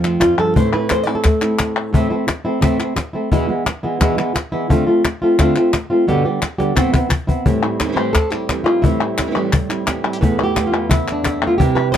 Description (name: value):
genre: flamenco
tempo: 174 BPM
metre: 4/4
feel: straight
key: A minor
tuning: A4 = 435 Hz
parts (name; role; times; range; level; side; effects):
- flamenco guitar; melody; 0.0-12.0 s; E2 to D5; -17 LUFS; equal; none
- flamenco guitar; stabs; 0.0-1.9, 7.5-12.0 s; E2 to F4; -22 LUFS; right 2 dB; none
- palmas hand claps; percussion; 0.0-12.0 s; none; -22 LUFS; left 4 dB; none
- cajon; percussion; 0.2-12.0 s; none; -18 LUFS; left 1 dB; none
room: light reverb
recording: dark, warm production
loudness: -15 LUFS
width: side -10 dB against mid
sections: 0.0-1.9 A section; 1.9-7.5 B section; 7.5-12.0 C section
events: nylon-string guitar solo 0.0-1.9; drum fill 6.1-7.5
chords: 0.0 F; 0.6 Am; 3.3 E; 4.7 Dm7; 6.1 G; 6.8 Amadd9; 7.5 Am7; 10.2 Esus4